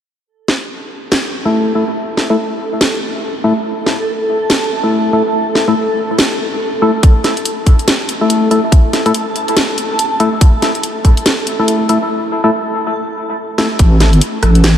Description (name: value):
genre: deep dubstep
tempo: 142 BPM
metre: 4/4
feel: swing 60% on 16ths, half-time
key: unclear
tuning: A4 = 440 Hz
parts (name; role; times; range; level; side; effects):
- backwards swelling texture; texture; 1.7-12.1 s; A4; -21 LUFS; right 1 dB; built-in reverb, lush chorus
- garage drum kit; drums; 0.5-14.7 s; hi-hat, rim click, snare drum; -18 LUFS; equal; none
- percussive organ stab; stabs; 1.5-13.7 s; A3 to A4; -16 LUFS; left 1 dB; chorus, dub echo
- electronic kick drum; drums; 7.0-11.1, 13.8-13.9 s; none; -8 LUFS; equal; none
- granular cloud pad; sustained chords; 14.3-14.8 s; A3 to A4; -24 LUFS; left 1 dB; built-in reverb, analog chorus
- deep soft wobble bass; bass; 13.8-14.8 s; A1; -8 LUFS; equal; chorus
room: wet cathedral reverb, RT60 5.0 s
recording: dreamy mix soaked in reverb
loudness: -12 LUFS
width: side -10 dB against mid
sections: 0.3-13.8 A section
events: filter sweep on synth stab 0.3-13.8; break 12.1-13.8; drum fill 13.6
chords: 0.3 A5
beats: | 0.27 0.69 1.12 1.54 | 1.96 2.38 2.81 3.23 | 3.65 4.08 4.50 4.92 | 5.34 5.76 6.19 6.61 | 7.03 7.46 7.88 8.30 | 8.72 9.14 9.57 9.99 | 10.41 10.84 11.26 11.68 | 12.10 12.53 12.95 13.37 | 13.79 14.22 14.64